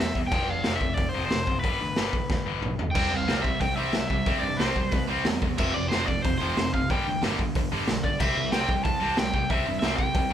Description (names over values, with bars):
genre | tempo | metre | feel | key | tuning
punk rock | 183 BPM | 4/4 | straight | C major | A4 = 440 Hz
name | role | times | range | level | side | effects
crunchy overdriven guitar | melody | 0.0-10.3 s | B4 to A5 | -29 LUFS | left 1 dB | none
tight distorted guitar | riff | 0.0-10.3 s | F2 to C4 | -31 LUFS | left 7 dB | distortion
fuzz picked electric bass | bass | 0.0-10.3 s | F1 to G2 | -33 LUFS | right 1 dB | overdrive
raw garage drum kit | drums | 0.2-10.2 s | crash cymbal, hi-hat, kick drum, snare drum, splash cymbal, toms | -27 LUFS | equal | none
tight distorted guitar | riff | 2.9-10.3 s | F2 to C4 | -31 LUFS | right 6 dB | distortion
room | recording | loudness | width
moderate large studio reverb, RT60 0.9 s | band playing live in one room | -23 LUFS | side -10 dB against mid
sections
0.0-10.3 A section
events
drum fill 2.3-3.0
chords
0.3 F5; 1.6 G; 3.0 C; 5.6 F5; 6.9 G5; 8.2 C